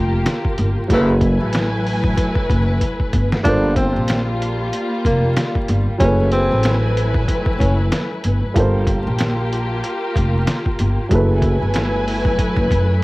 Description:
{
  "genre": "hip hop, boom-bap hip-hop",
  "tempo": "94 BPM",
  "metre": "4/4",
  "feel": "swing 58% on 16ths",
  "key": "unclear",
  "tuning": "A4 = 439 Hz",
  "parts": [
    { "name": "dark upright piano", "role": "accompaniment", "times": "0.0-13.0 s", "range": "F#3 to C5", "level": "-24 LUFS", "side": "right 2 dB", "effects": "cassette tape, high-pass filter, low-pass filter" },
    { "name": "dark studio string section", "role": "sustained chords", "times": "0.0-13.0 s", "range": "F#3 to G#5", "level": "-23 LUFS", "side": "left 1 dB", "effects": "high-pass filter, low-pass filter, cassette tape" },
    { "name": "upright bass", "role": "bass", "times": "0.0-13.0 s", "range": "F1 to F#2", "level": "-18 LUFS", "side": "equal", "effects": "none" },
    { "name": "trip hop sampler-style drum kit", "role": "drums", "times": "0.3-12.9 s", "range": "hi-hat, kick drum, snare drum", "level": "-21 LUFS", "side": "equal", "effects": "cassette tape" },
    { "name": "warm horn section", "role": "stabs", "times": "0.9-1.1 s", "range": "C#3 to E4", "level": "-27 LUFS", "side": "left 2 dB", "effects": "high-pass filter, low-pass filter, cassette tape, analog delay" },
    { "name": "breathy tenor saxophone", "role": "melody", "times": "3.4-7.8 s", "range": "Bb3 to D4", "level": "-21 LUFS", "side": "equal", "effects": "high-pass filter, low-pass filter, cassette tape, analog delay" }
  ],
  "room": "light reverb",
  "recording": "home recording on cassette, vinyl crackle",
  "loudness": "-15 LUFS",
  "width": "side -21 dB against mid",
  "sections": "0.0-3.5 A section; 3.5-13.0 A section",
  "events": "drum fill 2.8-3.5",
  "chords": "0.0 Gm11; 0.9 F#m11; 3.5 Gm11; 6.0 F#m11; 8.6 Gm11; 11.1 F#m11",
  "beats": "0.26 | 0.90 1.54 2.17 2.81 | 3.45 4.09 4.73 5.37 | 6.00 6.64 7.28 7.92 | 8.56 9.20 9.83 10.47 | 11.11 11.75 12.39 13.03"
}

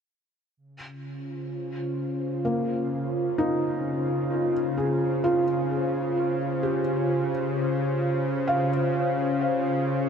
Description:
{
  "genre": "ambient",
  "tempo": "65 BPM",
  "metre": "3/4",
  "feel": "straight",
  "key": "Db lydian",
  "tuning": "A4 = 440 Hz",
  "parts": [
    { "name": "airy breathy pad", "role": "sustained chords", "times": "0.6-10.1 s", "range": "Db3 to C5", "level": "-26 LUFS", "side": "equal", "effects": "chorus" },
    { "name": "bowed-like drone", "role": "drone", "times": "0.9-10.1 s", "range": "Db3", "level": "-32 LUFS", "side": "left 1 dB", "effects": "built-in reverb" },
    { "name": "felt-muted upright piano", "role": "arpeggios", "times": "2.4-10.1 s", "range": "Bb3 to F5", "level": "-29 LUFS", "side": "left 1 dB", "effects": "diffuse ambient delay" }
  ],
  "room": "wet huge ambient reverb, RT60 7.5 s",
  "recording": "none",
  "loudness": "-24 LUFS",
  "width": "side -7 dB against mid",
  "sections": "0.6-10.1 A section",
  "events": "filter sweep on analog synth pad 0.6-10.1",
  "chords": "0.6 Dbmaj7",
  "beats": "| 0.58 1.52 2.45 | 3.38 4.31 5.24 | 6.17 7.09 8.01 | 8.93 9.86"
}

